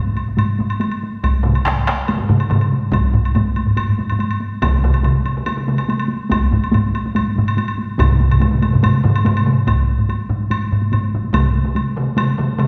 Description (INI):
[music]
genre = japanese traditional, taiko drum ensemble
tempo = 142 BPM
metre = 4/4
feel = straight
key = none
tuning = none
[part]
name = taiko ensemble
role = percussion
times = 0.2-12.7 s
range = none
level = -25 LUFS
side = equal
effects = none
[part]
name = woodblock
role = percussion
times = 0.2-12.7 s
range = none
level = -29 LUFS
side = equal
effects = none
[part]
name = taiko ensemble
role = percussion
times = 0.3-11.2 s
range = none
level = -21 LUFS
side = equal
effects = none
[part]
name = taiko ensemble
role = percussion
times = 1.2-11.4 s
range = none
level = -21 LUFS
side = equal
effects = none
[part]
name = taiko ensemble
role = percussion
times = 1.4-12.7 s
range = none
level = -22 LUFS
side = equal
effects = none
[sound]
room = wet recital hall reverb, RT60 1.6 s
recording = recorded in a church or concert hall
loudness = -17 LUFS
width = mono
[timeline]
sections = 0.0-9.7 A section; 9.7-12.7 B section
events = speeding up 0.0-12.7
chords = none